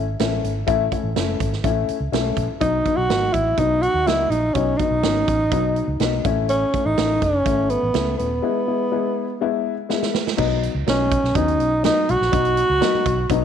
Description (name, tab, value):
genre	uptempo 1960s-style soul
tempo	124 BPM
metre	4/4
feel	straight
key	B mixolydian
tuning	A4 = 440 Hz
part	dark upright piano	accompaniment	0.0-13.4 s	F#3 to E4	-24 LUFS	left 11 dB	none
part	vintage muted fingered electric bass	bass	0.0-13.4 s	D#1 to D#2	-25 LUFS	right 1 dB	none
part	swinging big-band drum kit	drums	0.2-13.4 s	crash cymbal, hi-hat, kick drum, snare drum	-25 LUFS	right 6 dB	none
part	dark tenor saxophone	melody	2.6-13.4 s	B3 to F#4	-20 LUFS	right 1 dB	none
room	light reverb, small room ambience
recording	1960s-style stereo with parts hard left and right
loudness	-18 LUFS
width	side -8 dB against mid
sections	0.0-10.4 A section; 10.4-13.4 B section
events	break 8.4-10.4; drum fill 9.9-10.4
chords	0.0 A; 2.6 B; 6.3 A; 8.4 E; 10.4 B